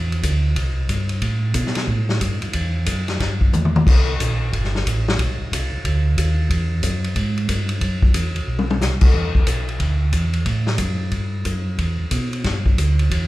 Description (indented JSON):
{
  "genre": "soul jazz organ trio",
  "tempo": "182 BPM",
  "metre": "4/4",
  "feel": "swing 63% on 8ths",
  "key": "E minor",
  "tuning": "A4 = 440 Hz",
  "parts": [
    { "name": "mellow tonewheel organ", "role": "bass", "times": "0.0-13.3 s", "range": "G1 to B2", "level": "-20 LUFS", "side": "right 1 dB", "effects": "chorus vibrato, slow rotary speaker" },
    { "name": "vintage drum kit", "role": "drums", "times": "0.1-13.2 s", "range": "crash cymbal, hi-hat, kick drum, ride cymbal, snare drum, toms", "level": "-21 LUFS", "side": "left 1 dB", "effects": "none" }
  ],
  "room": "moderate recital hall reverb, RT60 1.4 s",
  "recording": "recorded in a church or concert hall",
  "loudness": "-18 LUFS",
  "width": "side -17 dB against mid",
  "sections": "0.0-9.1 A section; 9.1-13.3 A section",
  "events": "drum fill 3.5-3.9, 8.5-8.8",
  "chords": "none",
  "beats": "0.23 0.56 0.89 | 1.22 1.55 1.88 2.21 | 2.54 2.87 3.20 3.53 | 3.86 4.19 4.52 4.85 | 5.18 5.51 5.84 6.17 | 6.50 6.83 7.16 7.49 | 7.82 8.15 8.48 8.81 | 9.14 9.47 9.80 10.13 | 10.47 10.80 11.13 11.46 | 11.79 12.12 12.45 12.78 | 13.11"
}